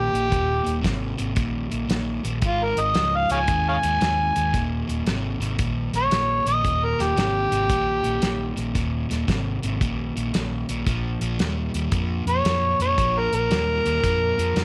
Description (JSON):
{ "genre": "electric blues shuffle", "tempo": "114 BPM", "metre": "4/4", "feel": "swing 66% on 8ths", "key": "Eb mixolydian", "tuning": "A4 = 439 Hz", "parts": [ { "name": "overdriven harmonica", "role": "melody", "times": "0.0-8.6, 12.3-14.6 s", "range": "F4 to Ab5", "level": "-24 LUFS", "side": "equal", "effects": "none" }, { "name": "crunchy overdriven guitar", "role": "riff", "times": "0.0-14.6 s", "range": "Eb2 to G3", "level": "-30 LUFS", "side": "equal", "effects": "none" }, { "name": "vintage muted fingered electric bass", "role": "bass", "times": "0.0-14.6 s", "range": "Eb1 to F2", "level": "-30 LUFS", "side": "equal", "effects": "none" }, { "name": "warm soul drum kit", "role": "drums", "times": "0.1-14.6 s", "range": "hi-hat, kick drum, snare drum", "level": "-29 LUFS", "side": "equal", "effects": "none" } ], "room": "small room reverb", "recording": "none", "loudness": "-23 LUFS", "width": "mono", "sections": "0.0-14.6 A section", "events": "harmonica solo 0.0-14.6", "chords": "0.0 Eb5; 2.4 Ab5; 4.5 Eb; 10.9 Bb5" }